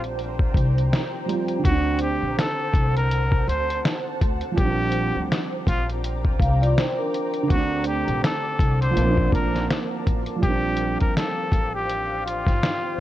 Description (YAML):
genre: lo-fi hip hop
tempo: 82 BPM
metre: 4/4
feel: swing 58% on 16ths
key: Bb major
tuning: A4 = 439 Hz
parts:
  - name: felt-muted upright piano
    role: accompaniment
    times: 0.0-13.0 s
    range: D3 to F4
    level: -28 LUFS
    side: right 4 dB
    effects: cassette tape, low-pass filter
  - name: granular cloud pad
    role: sustained chords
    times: 0.0-13.0 s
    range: Bb4 to D6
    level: -32 LUFS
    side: equal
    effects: built-in reverb, low-pass filter
  - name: upright bass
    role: bass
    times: 0.0-12.6 s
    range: G1 to D2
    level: -25 LUFS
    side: left 1 dB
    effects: none
  - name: lo-fi sampler-style drum kit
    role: drums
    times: 0.0-12.8 s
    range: hi-hat, kick drum, snare drum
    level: -23 LUFS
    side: left 1 dB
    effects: vintage 12-bit sampler grit
  - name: trumpet with straight mute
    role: melody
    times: 1.7-13.0 s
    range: F4 to C5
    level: -27 LUFS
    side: left 1 dB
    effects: low-pass filter, analog delay
  - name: vibraphone with soft mallets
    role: second line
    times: 6.4-7.5 s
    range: D4 to F5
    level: -26 LUFS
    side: left 1 dB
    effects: low-pass filter, analog delay
room: light reverb, small room ambience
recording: cassette tape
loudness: -20 LUFS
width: side -14 dB against mid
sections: 0.0-10.4 A section; 10.4-13.0 B section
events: none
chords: 0.0 Bb69; 1.6 D7; 4.6 Bb69; 7.5 D7; 9.0 Bbmaj7; 10.4 Bb69